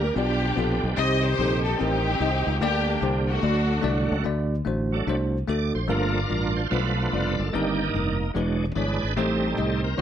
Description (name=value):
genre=uptempo gospel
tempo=146 BPM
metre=4/4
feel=swing 65% on 8ths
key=unclear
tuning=A4 = 444 Hz
part: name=warm studio string section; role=melody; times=0.0-4.1 s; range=A3 to Eb5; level=-26 LUFS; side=left 2 dB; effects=slapback echo
part: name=bell-like tine electric piano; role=accompaniment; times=0.0-10.0 s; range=G2 to Eb5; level=-27 LUFS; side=left 1 dB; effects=auto-pan
part: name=bright tonewheel organ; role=sustained chords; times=0.0-10.0 s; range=D3 to D5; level=-29 LUFS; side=right 3 dB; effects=slow rotary speaker, chorus vibrato
part: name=fingered electric bass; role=bass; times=0.0-10.0 s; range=E1 to D2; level=-26 LUFS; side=equal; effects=none
room=light reverb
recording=none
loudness=-22 LUFS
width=side -9 dB against mid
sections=0.0-4.3 A section; 4.3-5.9 B section; 5.9-10.0 C section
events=tonewheel organ solo 4.3-5.9, 5.9-10.0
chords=0.2 G7/B; 1.0 Cm; 2.6 Gm/D; 3.4 D; 5.9 Gm7; 6.7 G7/B; 7.5 Cm7/G; 8.3 E7; 9.2 Am7b5